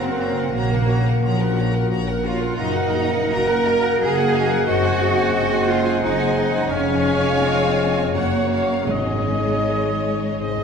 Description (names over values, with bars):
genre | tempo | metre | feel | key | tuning
classical, slow romantic movement for symphony orchestra | 78-90 BPM | 3/4 | rubato | unclear | A4 = 445 Hz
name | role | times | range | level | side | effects
rich symphonic violin section | melody | 0.0-10.6 s | Eb5 to Bb5 | -31 LUFS | left 3 dB | none
dark clarinet | second line | 0.0-10.6 s | Bb4 to Db5 | -28 LUFS | equal | none
dark symphonic violin section | second line | 0.0-10.6 s | Bb4 to Gb5 | -31 LUFS | equal | none
warm oboe | second line | 0.0-10.6 s | Eb5 to Gb5 | -30 LUFS | left 1 dB | none
mellow bassoon | accompaniment | 0.0-10.6 s | Gb3 to Bb3 | -27 LUFS | right 2 dB | none
warm symphonic viola section | accompaniment | 0.0-10.6 s | Gb4 to Db5 | -29 LUFS | right 1 dB | none
warm French horn section | sustained chords | 0.0-10.6 s | Bb3 to Ab4 | -27 LUFS | left 5 dB | none
concert harp | arpeggios | 0.0-10.6 s | F2 to Eb5 | -27 LUFS | left 4 dB | none
rich symphonic cello section | bass | 0.0-10.6 s | F3 to Bb4 | -24 LUFS | right 2 dB | none
rich symphonic double bass section | bass | 0.0-10.6 s | F1 to Bb1 | -25 LUFS | right 2 dB | none
timpani | percussion | 8.9-10.6 s | Ab2 | -30 LUFS | right 1 dB | none
room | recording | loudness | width
wet concert hall reverb, RT60 1.8 s | recorded in a church or concert hall | -17 LUFS | side -6 dB against mid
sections
0.0-10.6 A section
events
timpani fill 10.4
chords
0.0 Gb; 0.5 Gb/Bb; 2.6 Ebm/Gb; 4.7 Ab7/Gb; 6.7 Db/F; 8.1 Gb; 8.9 Absus4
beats
| 0.54 1.23 1.91 | 2.59 3.33 4.01 | 4.69 5.37 6.04 | 6.72 7.42 8.14 | 8.88 9.63 10.39